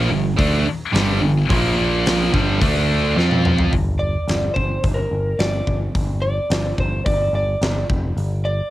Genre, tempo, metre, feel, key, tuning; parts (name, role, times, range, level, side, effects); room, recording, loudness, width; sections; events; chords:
hard rock; 108 BPM; 4/4; straight; G minor; A4 = 441 Hz
biting overdriven guitar; riff; 0.0-3.7 s; G2 to F4; -20 LUFS; right 5 dB; cassette tape
scooped high-gain guitar; riff; 0.0-3.7 s; G2 to F4; -22 LUFS; left 7 dB; distortion, cassette tape
picked electric bass; bass; 0.0-8.6 s; F1 to F2; -22 LUFS; equal
huge arena drum kit; drums; 0.4-8.3 s; hi-hat, kick drum, snare drum, toms; -22 LUFS; equal; cassette tape
lightly driven lead guitar; melody; 4.0-8.7 s; Bb4 to D5; -24 LUFS; right 1 dB; cassette tape
light reverb; home recording on cassette; -17 LUFS; side -15 dB against mid
0.0-3.7 A section; 3.7-8.7 B section
drum fill 3.2-3.7
0.0 Gm; 1.5 Bb5; 2.3 G5; 2.6 D5; 3.2 F5; 3.7 G5; 7.9 N.C.; 8.2 G5